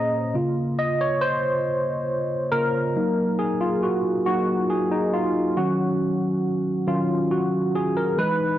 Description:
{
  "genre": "R&B",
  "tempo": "46 BPM (dotted quarters)",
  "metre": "6/8",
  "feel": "straight",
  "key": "Db major",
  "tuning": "A4 = 440 Hz",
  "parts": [
    { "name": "barky tine electric piano", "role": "solo", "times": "0.0-8.6 s", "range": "Bb2 to Bb5", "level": "-21 LUFS", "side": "equal", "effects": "overdrive, analog chorus" }
  ],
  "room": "light reverb",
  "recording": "dry, gritty hardware recording, cassette tape",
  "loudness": "-21 LUFS",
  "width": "side -12 dB against mid",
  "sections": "0.3-8.6 A section",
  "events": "tine electric piano fill 0.0-0.3; tine electric piano solo 0.3-8.6",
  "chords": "0.3 Db6; 2.9 Gb6; 5.6 Ebm7",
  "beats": "| 0.34 1.64 | 2.95 4.25 | 5.56 6.86 | 8.16"
}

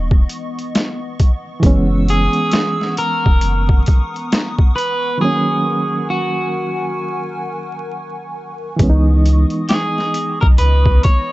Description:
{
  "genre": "lo-fi hip hop",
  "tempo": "67 BPM",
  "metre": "4/4",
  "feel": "swing 63% on 16ths",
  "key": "C# dorian",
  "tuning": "A4 = 438 Hz",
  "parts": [
    { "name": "reed electric piano", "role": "accompaniment", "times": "0.0-11.3 s", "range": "D#3 to D#4", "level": "-22 LUFS", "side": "right 2 dB", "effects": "fast tremolo" },
    { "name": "hollow soft pad", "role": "sustained chords", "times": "0.0-11.3 s", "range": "B3 to E6", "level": "-28 LUFS", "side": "left 1 dB", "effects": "ensemble chorus" },
    { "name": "saturated sub bass", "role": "bass", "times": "0.0-11.0 s", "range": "D#1 to C#2", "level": "-14 LUFS", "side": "equal", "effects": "none" },
    { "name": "boom bap sampler-style drum kit", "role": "drums", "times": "0.1-11.3 s", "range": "hi-hat, kick drum, snare drum", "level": "-14 LUFS", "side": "equal", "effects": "overdrive" },
    { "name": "electric guitar at the edge of break-up", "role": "melody", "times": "2.1-11.3 s", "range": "F#4 to C#5", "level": "-20 LUFS", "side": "equal", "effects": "analog delay" }
  ],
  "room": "light reverb",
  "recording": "vinyl crackle, nothing above 7.8 kHz",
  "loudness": "-14 LUFS",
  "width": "side -18 dB against mid",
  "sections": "0.0-8.8 A section; 8.8-11.3 B section",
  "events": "break 5.2-8.8",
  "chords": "0.0 C#m9; 1.6 F#7sus4; 5.2 G#9sus4; 8.8 C#m9",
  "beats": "0.74 | 1.63 2.53 3.42 4.32 | 5.21 6.11 7.00 7.90 | 8.80 9.69 10.59"
}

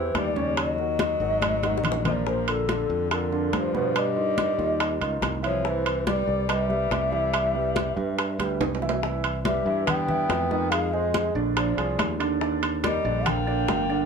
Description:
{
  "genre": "Afro-Cuban jazz",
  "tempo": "142 BPM",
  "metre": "4/4",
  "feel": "straight",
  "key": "unclear",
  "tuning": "A4 = 440 Hz",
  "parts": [
    { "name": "mellow long shakuhachi", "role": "melody", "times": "0.0-14.1 s", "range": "A4 to G5", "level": "-28 LUFS", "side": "left 1 dB", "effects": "plate reverb" },
    { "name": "breathy tenor saxophone", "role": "second line", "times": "0.0-14.1 s", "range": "D3 to B3", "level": "-31 LUFS", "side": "left 6 dB", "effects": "none" },
    { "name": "warm grand piano", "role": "accompaniment", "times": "0.0-14.1 s", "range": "Bb2 to E5", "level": "-30 LUFS", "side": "right 6 dB", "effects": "none" },
    { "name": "modern bright fingered electric bass", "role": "bass", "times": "0.0-14.1 s", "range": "G1 to G2", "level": "-30 LUFS", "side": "equal", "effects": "none" },
    { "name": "bongos", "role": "percussion", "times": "0.1-14.1 s", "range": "none", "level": "-33 LUFS", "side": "left 7 dB", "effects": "none" },
    { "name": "congas", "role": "percussion", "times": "0.1-13.9 s", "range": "none", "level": "-32 LUFS", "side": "left 2 dB", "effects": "none" },
    { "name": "timbales", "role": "percussion", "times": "0.1-13.9 s", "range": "none", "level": "-30 LUFS", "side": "right 4 dB", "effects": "none" }
  ],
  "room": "moderate club reverb, RT60 0.6 s",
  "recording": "heard from further back in the room",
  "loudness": "-22 LUFS",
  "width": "side -6 dB against mid",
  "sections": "0.0-9.0 A section; 9.0-14.1 B section",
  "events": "drum fill 1.4-2.3, 8.4-9.0",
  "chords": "0.0 Am7 (rootless); 0.6 Ebm7; 1.4 Absus2; 2.3 Bbmaj7; 4.0 Gaug7; 5.6 Cmaj7; 10.7 Bb7; 12.4 Ebmaj7",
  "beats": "0.15 | 0.57 1.00 1.42 1.84 | 2.27 2.69 3.11 3.53 | 3.96 4.38 4.80 5.22 | 5.64 6.07 6.49 6.91 | 7.33 7.76 8.18 8.60 | 9.03 9.45 9.87 10.30 | 10.72 11.14 11.57 11.99 | 12.41 12.84 13.26 13.68"
}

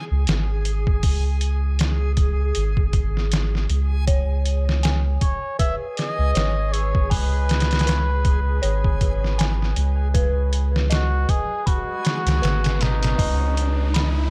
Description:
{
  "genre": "trip hop",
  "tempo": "79 BPM",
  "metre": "4/4",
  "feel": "swing 57% on 16ths",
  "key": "unclear",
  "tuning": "A4 = 439 Hz",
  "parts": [
    { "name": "backwards swelling texture", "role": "texture", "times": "0.0-14.3 s", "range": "G#4", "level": "-38 LUFS", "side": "equal", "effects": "built-in reverb" },
    { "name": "soft dub sub bass", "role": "bass", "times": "0.1-14.3 s", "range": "G#1 to C#2", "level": "-23 LUFS", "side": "equal", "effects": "none" },
    { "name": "trip hop sampler-style drum kit", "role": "drums", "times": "0.3-14.2 s", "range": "hi-hat, kick drum, snare drum", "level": "-25 LUFS", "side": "equal", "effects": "small room ambience" },
    { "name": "dark detuned synth bell", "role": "arpeggios", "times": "4.1-14.3 s", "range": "B4 to B5", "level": "-34 LUFS", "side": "equal", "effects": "chorus, dub echo" },
    { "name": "trumpet with cup mute", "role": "melody", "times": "5.2-14.3 s", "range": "D#4 to E5", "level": "-30 LUFS", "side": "equal", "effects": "vintage 12-bit sampler grit, tape echo" },
    { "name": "riser", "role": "sound effects", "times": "11.5-14.3 s", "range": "none", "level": "-36 LUFS", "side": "equal", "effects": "none" }
  ],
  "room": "digital ambience",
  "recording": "echo-heavy mix",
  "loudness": "-21 LUFS",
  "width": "mono",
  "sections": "0.0-14.3 A section",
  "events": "riser 11.5-14.3",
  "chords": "0.0 C#5; 10.1 B",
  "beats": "0.28 | 1.03 1.79 2.55 3.31 | 4.07 4.83 5.59 6.35 | 7.11 7.87 8.63 9.39 | 10.15 10.91 11.67 12.43 | 13.19 13.95"
}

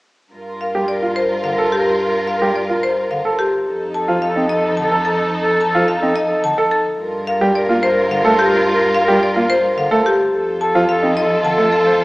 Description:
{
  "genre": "classical, minimalist pattern music",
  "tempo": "108 BPM",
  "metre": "3/4",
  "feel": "straight",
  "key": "G minor",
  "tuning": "A4 = 441 Hz",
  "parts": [
    { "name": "warm clarinet", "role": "second line", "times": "0.3-12.0 s", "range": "A4 to Bb4", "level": "-21 LUFS", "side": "equal", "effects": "none" },
    { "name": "warm studio string section", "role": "sustained chords", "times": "0.3-12.0 s", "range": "Eb4 to Bb4", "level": "-23 LUFS", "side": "equal", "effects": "none" },
    { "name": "rich cello", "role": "bass", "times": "0.3-12.0 s", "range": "F2 to G2", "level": "-27 LUFS", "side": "equal", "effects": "none" },
    { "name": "marimba with hard mallets", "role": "melody", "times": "0.6-11.9 s", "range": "G4 to A5", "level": "-19 LUFS", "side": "left 1 dB", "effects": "none" },
    { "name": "mellow bass clarinet", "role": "accompaniment", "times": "0.7-11.7 s", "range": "D3 to C4", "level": "-25 LUFS", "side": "equal", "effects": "none" },
    { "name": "clear baby grand piano", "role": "arpeggios", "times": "0.7-12.0 s", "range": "Eb4 to C5", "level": "-19 LUFS", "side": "right 1 dB", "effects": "none" }
  ],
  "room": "moderate recital hall reverb, RT60 1.7 s",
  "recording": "small speaker sound",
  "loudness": "-14 LUFS",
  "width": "side -21 dB against mid",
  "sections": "0.3-12.0 A section",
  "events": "none",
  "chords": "0.3 Gm7; 3.7 F7; 7.0 Gm9; 10.3 F",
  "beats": "| 0.33 0.89 1.44 | 2.00 2.55 3.11 | 3.67 4.22 4.78 | 5.33 5.89 6.44 | 7.00 7.55 8.11 | 8.66 9.22 9.78 | 10.33 10.89 11.44 | 12.00"
}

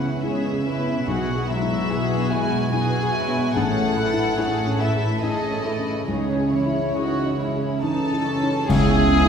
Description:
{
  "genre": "cinematic, emotional film score for orchestra",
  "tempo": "71 BPM",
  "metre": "3/4",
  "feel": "uneven beats, rubato",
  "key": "C# minor",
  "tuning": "A4 = 440 Hz",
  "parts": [
    { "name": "warm symphonic violin section", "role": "melody", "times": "0.0-9.3 s", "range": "C#5 to A5", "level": "-29 LUFS", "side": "left 2 dB", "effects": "none" },
    { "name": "warm symphonic violin section", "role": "second line", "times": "0.0-9.3 s", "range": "C#4 to C#5", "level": "-27 LUFS", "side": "left 1 dB", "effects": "none" },
    { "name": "dark symphonic viola section", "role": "accompaniment", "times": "0.0-8.7 s", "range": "E3 to D#4", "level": "-30 LUFS", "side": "right 2 dB", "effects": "none" },
    { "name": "felt-muted upright piano", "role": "accompaniment", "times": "0.0-9.3 s", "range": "A1 to D#5", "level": "-26 LUFS", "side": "left 2 dB", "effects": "none" },
    { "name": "concert harp", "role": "arpeggios", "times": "0.0-9.3 s", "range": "A2 to F#5", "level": "-29 LUFS", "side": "left 5 dB", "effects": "none" },
    { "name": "dark symphonic cello section", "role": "bass", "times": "0.0-9.3 s", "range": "A2 to C#3", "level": "-25 LUFS", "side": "right 2 dB", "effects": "none" },
    { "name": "cymbal swell, clash cymbals and concert bass drum", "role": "percussion", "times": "6.1-9.3 s", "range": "none", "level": "-30 LUFS", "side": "equal", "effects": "none" },
    { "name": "mellow clarinet", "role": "second line", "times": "8.7-9.3 s", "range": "B3", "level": "-29 LUFS", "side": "right 3 dB", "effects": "none" },
    { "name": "mellow cor anglais", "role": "second line", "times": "8.7-9.3 s", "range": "E5", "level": "-29 LUFS", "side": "right 5 dB", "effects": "none" },
    { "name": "silver concert flute", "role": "second line", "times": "8.7-9.3 s", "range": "G#5", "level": "-29 LUFS", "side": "left 2 dB", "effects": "none" },
    { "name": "dark French horn section", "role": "sustained chords", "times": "8.7-9.3 s", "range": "B3 to E4", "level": "-25 LUFS", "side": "equal", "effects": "none" },
    { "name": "dark symphonic double bass section", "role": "bass", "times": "8.7-9.3 s", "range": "C#2", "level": "-23 LUFS", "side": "right 2 dB", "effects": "none" }
  ],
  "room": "wet scoring stage reverb, RT60 1.9 s",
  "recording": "heard from further back in the room",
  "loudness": "-20 LUFS",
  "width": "side -7 dB against mid",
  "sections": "0.0-8.7 A section",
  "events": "band accent 8.7-9.3",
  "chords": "0.0 C#m7; 1.1 Eadd9/B; 3.6 Amaj7; 6.1 C#madd9; 8.7 C#m7",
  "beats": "0.23 | 1.06 1.90 2.73 | 3.56 4.39 5.22 | 6.08 6.96 7.82 | 8.68"
}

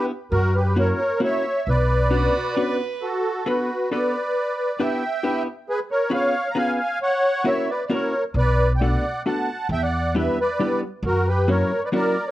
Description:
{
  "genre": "musette waltz",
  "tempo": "134 BPM",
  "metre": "3/4",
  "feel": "straight",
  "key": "B minor",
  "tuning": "A4 = 441 Hz",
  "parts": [
    { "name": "musette accordion", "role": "melody", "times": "0.0-12.3 s", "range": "F#4 to A#5", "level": "-22 LUFS", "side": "equal", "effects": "plate reverb" },
    { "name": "hollow-body jazz guitar", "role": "accompaniment", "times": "0.0-12.2 s", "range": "F#3 to B4", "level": "-24 LUFS", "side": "left 1 dB", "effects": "none" },
    { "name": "upright bass", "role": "bass", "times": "0.3-2.3, 8.3-11.6 s", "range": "B1 to F#2", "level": "-21 LUFS", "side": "equal", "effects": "none" },
    { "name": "clear violin", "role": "second line", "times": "2.1-3.0 s", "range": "F#4 to B4", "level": "-30 LUFS", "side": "right 6 dB", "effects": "none" }
  ],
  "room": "moderate small room ambience, RT60 0.5 s",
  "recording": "worn, warbling old tape, cassette tape, warbly pitch drift",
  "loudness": "-20 LUFS",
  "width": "side -15 dB against mid",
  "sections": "0.0-3.0 A section; 3.0-12.3 A section",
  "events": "none",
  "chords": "0.3 F#7; 1.7 Bmadd9; 3.0 Bm7; 4.4 Em7; 5.7 C#7; 7.0 F#7; 8.4 Bm7; 9.7 Em7; 11.0 F#7",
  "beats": "| 0.33 0.78 1.22 | 1.67 2.12 2.57 | 3.02 3.47 3.91 | 4.36 4.80 5.25 | 5.69 6.13 6.58 | 7.02 7.47 7.92 | 8.36 8.81 9.26 | 9.70 10.14 10.59 | 11.04 11.48 11.93"
}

